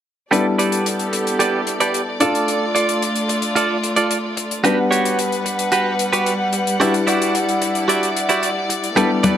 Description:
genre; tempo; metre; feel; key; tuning
nu-disco, nu disco; 111 BPM; 4/4; straight; unclear; A4 = 440 Hz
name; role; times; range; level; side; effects
warm baby grand piano; accompaniment; 0.3-9.4 s; G3 to F#5; -22 LUFS; left 2 dB; tape echo
warm chamber string section; sustained chords; 0.3-9.4 s; G3 to F#5; -22 LUFS; equal; none
direct-recorded clean electric guitar; riff; 0.3-9.4 s; E4 to D5; -20 LUFS; right 3 dB; wide subtle chorus, low-pass filter, tape echo
hi-hat; drums; 0.3-9.3 s; none; -25 LUFS; left 4 dB; none
congas; percussion; 9.0-9.3 s; none; -18 LUFS; left 3 dB; none
room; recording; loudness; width
moderate plate reverb, RT60 1.9 s, studio reverb; none; -16 LUFS; side -10 dB against mid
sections
0.3-9.4 A section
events
none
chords
0.3 A9sus4; 2.2 Dm; 4.6 Gmaj7; 6.8 Em9

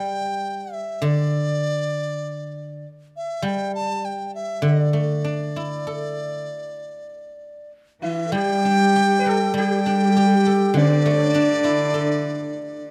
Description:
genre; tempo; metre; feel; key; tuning
chinese traditional, Chinese chamber ensemble; 100 BPM; 4/4; rubato; unclear; A4 = 444 Hz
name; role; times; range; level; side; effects
hollow dizi; melody; 0.0-12.9 s; D5 to A5; -27 LUFS; equal; none
guzheng; accompaniment; 0.0-12.9 s; D3 to A4; -26 LUFS; equal; none
breathy mellow xiao; second line; 8.0-12.9 s; D4 to A4; -28 LUFS; equal; none
rich cello; second line; 8.0-12.9 s; D3 to G3; -24 LUFS; equal; none
sitar; second line; 8.0-12.8 s; D4 to B4; -32 LUFS; equal; none
room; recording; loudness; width
light reverb; close, detailed microphones; -21 LUFS; mono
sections
0.0-8.3 A section; 8.3-12.9 B section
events
none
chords
none

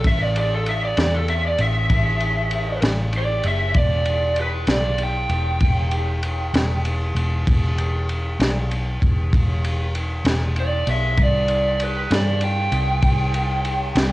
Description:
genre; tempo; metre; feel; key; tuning
slow blues; 65 BPM (dotted quarters); 12/8; straight; E minor; A4 = 440 Hz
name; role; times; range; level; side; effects
lead guitar through a small cranked amp; melody; 0.0-14.1 s; A4 to G5; -23 LUFS; right 1 dB; overdrive, cassette tape, plate reverb
vintage muted picked electric bass; bass; 0.0-14.1 s; E1 to G2; -22 LUFS; equal; none
crunchy breakbeat drum kit; drums; 0.0-14.1 s; kick drum, ride cymbal, snare drum; -23 LUFS; equal; cassette tape
room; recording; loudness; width
light reverb; home recording on cassette; -18 LUFS; side -17 dB against mid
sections
0.0-14.1 A section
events
lead electric guitar solo 0.0-14.1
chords
0.0 A5; 3.8 Em; 11.2 C5

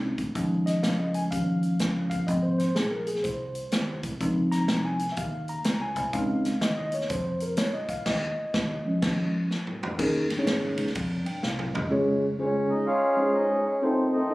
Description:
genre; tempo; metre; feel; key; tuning
uptempo gospel; 125 BPM; 4/4; swing 64% on 8ths; unclear; A4 = 440 Hz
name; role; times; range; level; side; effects
mellow tine electric piano; accompaniment; 0.0-14.3 s; Db3 to Bb5; -26 LUFS; equal; fast stereo tremolo
fingered electric bass; bass; 0.0-11.8 s; G1 to Ab2; -33 LUFS; equal; none
swinging big-band drum kit; drums; 0.2-11.9 s; crash cymbal, hi-hat, kick drum, ride cymbal, snare drum, toms; -31 LUFS; equal; none
mellow accordion; melody; 12.4-14.3 s; Eb3 to F4; -24 LUFS; equal; none
room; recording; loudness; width
moderate large studio reverb, RT60 1.1 s; recorded on a phone in the room, club reverb; -24 LUFS; side -19 dB against mid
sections
0.0-10.0 A section; 10.0-11.9 B section; 11.9-14.3 C section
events
tine electric piano solo 0.0-10.0; band accent 8.1-10.0; drum fill 9.5-10.0, 11.4-11.9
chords
0.4 Eb7sus4; 1.3 Eb9; 2.3 Ab6; 4.2 Dbmaj9; 6.1 Dbmaj9#11; 8.1 Eb7sus4; 11.9 Db; 13.8 F7

